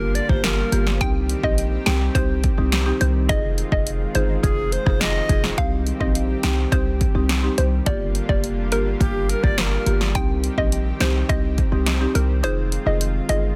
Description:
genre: dancehall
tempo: 105 BPM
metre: 4/4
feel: straight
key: C minor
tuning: A4 = 439 Hz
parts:
  - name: breathy bright tenor recorder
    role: second line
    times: 0.0-0.9, 4.4-5.4, 9.0-10.0 s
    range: G4 to Eb5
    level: -30 LUFS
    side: equal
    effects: tape echo
  - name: buzzing marimba with medium mallets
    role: accompaniment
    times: 0.0-13.5 s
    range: Bb3 to Ab4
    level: -29 LUFS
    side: equal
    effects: none
  - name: lush unison pad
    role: sustained chords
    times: 0.0-13.6 s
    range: D3 to G4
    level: -34 LUFS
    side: equal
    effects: chorus, sidechain pumping
  - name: hard-hitting 808-style bass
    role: bass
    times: 0.0-13.5 s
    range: F1 to C2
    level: -24 LUFS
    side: equal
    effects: none
  - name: downlifter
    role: sound effects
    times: 0.0-1.0 s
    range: none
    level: barely audible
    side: none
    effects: none
  - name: deep house drum kit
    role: drums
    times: 0.2-13.4 s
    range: hi-hat, kick drum, rim click, snare drum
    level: -25 LUFS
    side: equal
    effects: none
  - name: hollow square pluck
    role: melody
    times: 1.0-13.4 s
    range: Bb4 to G5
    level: -30 LUFS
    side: equal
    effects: chorus, tape echo
room: little or no reverb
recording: dense, heavily limited modern master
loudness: -21 LUFS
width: mono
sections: 0.0-13.6 A section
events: kick muted 12.4-13.6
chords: 0.0 Gm7; 1.0 Cm; 3.3 Fm7; 5.6 Cm; 7.9 Gm7; 10.1 Cm; 12.4 Fm7

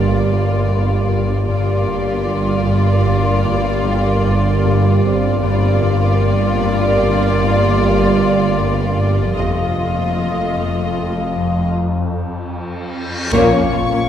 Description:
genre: cinematic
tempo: 76 BPM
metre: 5/4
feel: straight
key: G minor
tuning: A4 = 440 Hz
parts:
  - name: warm symphonic violin section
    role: melody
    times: 0.0-14.1 s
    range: Db5 to Eb5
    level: -24 LUFS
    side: left 1 dB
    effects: none
  - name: warm symphonic violin section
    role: second line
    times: 0.0-14.0 s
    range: Bb3 to F4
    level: -24 LUFS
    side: left 1 dB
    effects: none
  - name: dark symphonic viola section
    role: accompaniment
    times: 0.0-14.0 s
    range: A3 to Bb3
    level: -24 LUFS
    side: equal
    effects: none
  - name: concert harp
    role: riff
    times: 0.0-14.1 s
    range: F2 to Bb3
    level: -20 LUFS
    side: left 3 dB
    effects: none
  - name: rich symphonic cello section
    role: bass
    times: 0.0-14.0 s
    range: F2 to Bb2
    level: -22 LUFS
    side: right 4 dB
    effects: none
  - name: warm symphonic double bass section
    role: bass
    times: 0.0-13.8 s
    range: F1 to Bb1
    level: -21 LUFS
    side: right 2 dB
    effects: none
  - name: swarming drone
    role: drone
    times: 0.0-14.1 s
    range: G1 to F2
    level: -24 LUFS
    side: equal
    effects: built-in reverb
  - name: vibraphone with medium mallets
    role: texture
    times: 0.0-9.4 s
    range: C4 to F5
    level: -27 LUFS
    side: right 2 dB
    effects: none
  - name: reverse cymbal and sub drop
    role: sound effects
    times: 12.6-14.1 s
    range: none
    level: -27 LUFS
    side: left 1 dB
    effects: none
  - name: mellow French horn section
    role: sustained chords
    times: 13.3-14.1 s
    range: Db4 to F4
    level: -21 LUFS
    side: left 4 dB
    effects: none
  - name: mellow trombone section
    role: sustained chords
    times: 13.3-14.1 s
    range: Bb2 to Bb3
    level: -25 LUFS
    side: right 3 dB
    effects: none
  - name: warm symphonic violin section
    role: texture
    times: 13.3-14.1 s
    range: Db6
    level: -26 LUFS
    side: left 2 dB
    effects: none
room: wet scoring stage reverb, RT60 1.6 s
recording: heard from further back in the room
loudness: -14 LUFS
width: side -9 dB against mid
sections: 0.0-13.3 A section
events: break 11.7-13.3; reverse cymbal 12.6-13.3; band accent 13.3-14.1; impact 13.3-14.1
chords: 0.0 Gm7; 9.4 F7; 13.3 Bbm

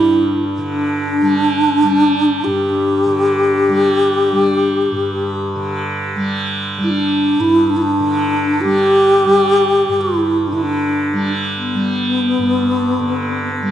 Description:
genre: world meditative, free-time meditation music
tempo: free time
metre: none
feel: none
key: G major pentatonic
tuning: A4 = 440 Hz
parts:
  - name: breathy bass flute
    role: melody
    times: 0.0-13.7 s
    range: B3 to G4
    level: -14 LUFS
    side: equal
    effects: ping-pong delay
  - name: tanpura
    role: drone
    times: 0.0-13.7 s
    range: G2 to G3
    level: -20 LUFS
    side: right 1 dB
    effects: none
  - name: glass harmonica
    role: texture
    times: 0.0-4.5 s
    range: D4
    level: -22 LUFS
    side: left 4 dB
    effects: none
room: wet recital hall reverb, RT60 1.5 s, small room ambience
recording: nothing above 10.5 kHz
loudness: -13 LUFS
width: side -10 dB against mid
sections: 0.0-13.7 A section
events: none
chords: none

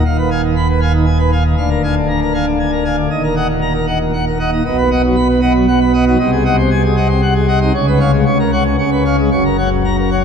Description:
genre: classical, organ toccata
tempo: 117 BPM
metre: 3/4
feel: straight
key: Eb minor, F# major from 4.7 s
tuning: A4 = 443 Hz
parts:
  - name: pipe organ, plenum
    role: solo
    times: 0.0-10.2 s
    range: D1 to Cb6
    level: -12 LUFS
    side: equal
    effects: none
room: wet cathedral reverb, RT60 4.8 s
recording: dark, warm production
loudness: -12 LUFS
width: side -6 dB against mid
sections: 0.0-10.2 A section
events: none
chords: 0.0 Fm7b5/Eb; 1.6 Bb7/D; 3.1 Ebm; 4.7 B; 6.2 G#7/B#; 7.7 C#7; 8.3 F#/C#; 8.8 C#7; 9.3 F#

